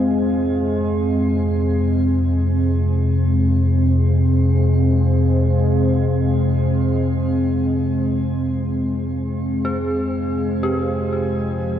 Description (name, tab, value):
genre	dark ambient drone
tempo	free time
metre	none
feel	none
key	F minor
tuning	A4 = 441 Hz
part	deep dark ambient pad	sustained chords	0.0-11.8 s	F3 to F5	-20 LUFS	right 1 dB	chorus, built-in reverb, shimmer reverb
part	dark detuned synth bell	arpeggios	0.0-11.8 s	C4 to Ab4	-27 LUFS	equal	chorus, ping-pong delay, shimmer reverb
part	deep rumbling drone	drone	0.0-11.8 s	F2 to C3	-19 LUFS	left 1 dB	built-in reverb
room	wet huge ambient reverb, RT60 6.9 s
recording	worn, warbling old tape, cassette tape, warbly pitch drift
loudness	-17 LUFS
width	side -10 dB against mid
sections	0.0-11.8 A section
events	fade-in on synth bell 0.0-11.8; filter sweep on synth drone 0.0-11.8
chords	0.0 Fm; 10.4 Ab/F